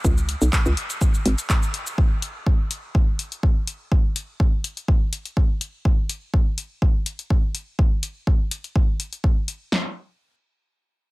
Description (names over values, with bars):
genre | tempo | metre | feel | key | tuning
minimal techno | 124 BPM | 4/4 | straight | unclear | A4 = 440 Hz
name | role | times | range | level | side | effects
hollow knocking FM bass | bass | 0.0-1.3 s | G#1 to C#2 | -20 LUFS | equal | tube saturation, sidechain pumping
punchy analog drum machine | drums | 0.0-9.8 s | kick drum, snare drum | -19 LUFS | equal | none
punchy analog drum machine | drums | 0.0-9.6 s | handclaps, hi-hat, shaker | -28 LUFS | left 2 dB | none
room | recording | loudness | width
little or no reverb | none | -20 LUFS | side -22 dB against mid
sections
0.0-9.7 A section; 9.7-11.1 B section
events
none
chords
none